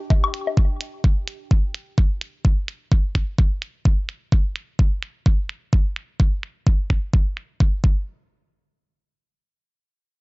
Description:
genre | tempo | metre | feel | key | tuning
minimal techno | 128 BPM | 4/4 | swing 58% on 16ths | unclear | A4 = 440 Hz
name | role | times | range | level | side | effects
warbly tape-like pad | texture | 0.0-0.6 s | D4 to G5 | -37 LUFS | left 2 dB | chorus, built-in reverb, phaser, sidechain pumping
electronic kick drum | drums | 0.1-7.9 s | none | -17 LUFS | equal | overdrive
woodblock | percussion | 0.1-0.6 s | none | -25 LUFS | left 5 dB | tape echo
electronic hi-hat | drums | 0.3-7.5 s | none | -29 LUFS | right 2 dB | low-pass filter on hats
room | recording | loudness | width
little or no reverb | dry, gritty hardware recording, nothing above 7.6 kHz | -19 LUFS | side -27 dB against mid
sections
0.0-8.1 A section; 8.1-10.2 B section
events
none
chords
0.0 G5; 7.8 N.C.

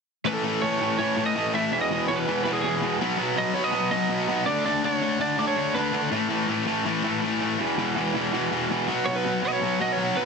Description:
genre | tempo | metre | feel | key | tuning
punk | 164 BPM | 4/4 | straight | unclear | A4 = 440 Hz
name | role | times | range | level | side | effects
distorted electric guitar | riff | 0.2-10.3 s | E2 to D4 | -26 LUFS | left 11 dB | distortion
raw garage guitar | riff | 0.2-10.3 s | E2 to D4 | -28 LUFS | right 15 dB | overdrive
lightly driven lead guitar | melody | 0.3-6.0, 9.1-10.3 s | G#4 to E5 | -27 LUFS | right 2 dB | ping-pong delay
room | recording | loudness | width
light reverb | dense, heavily limited modern master | -22 LUFS | side -5 dB against mid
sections
0.3-10.3 A section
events
none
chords
0.3 A; 1.7 E; 3.0 B; 4.5 D5; 6.1 A5; 7.6 E5; 8.9 B5

